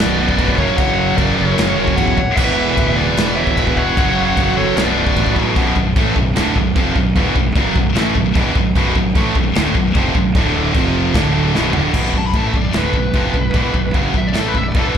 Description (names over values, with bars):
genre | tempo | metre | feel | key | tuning
heavy metal | 151 BPM | 4/4 | straight | B minor | A4 = 440 Hz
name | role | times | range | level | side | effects
dark smooth lead guitar | melody | 0.0-5.3, 12.2-15.0 s | A4 to B5 | -22 LUFS | left 2 dB | overdrive, tape echo
high-gain lead guitar | second line | 0.0-5.3 s | A4 to C#5 | -26 LUFS | equal | distortion, slapback echo
heavy high-gain guitar | riff | 0.0-15.0 s | B1 to A3 | -21 LUFS | left 13 dB | distortion
high-gain distorted guitar | riff | 0.0-12.0 s | B1 to A3 | -23 LUFS | equal | distortion
tight distorted guitar | riff | 0.0-15.0 s | B1 to A3 | -20 LUFS | right 10 dB | distortion, slapback echo
fuzz fingered electric bass | bass | 0.0-15.0 s | B0 to E2 | -21 LUFS | left 1 dB | overdrive
modern studio drum kit | drums | 0.0-15.0 s | china cymbal, crash cymbal, kick drum, snare drum, toms | -19 LUFS | equal | none
room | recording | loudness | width
little or no reverb | live gig heard through the venue's PA, club reverb | -13 LUFS | side -8 dB against mid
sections
0.0-5.6 A section; 5.6-11.9 B section; 11.9-15.0 C section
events
drum fill 11.5-11.9; lead electric guitar solo 11.9-15.0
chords
0.0 Bm; 0.6 F#; 2.4 E5; 4.0 F#5; 4.8 Bm; 10.3 D5; 10.7 F5; 11.1 D5; 11.5 Bm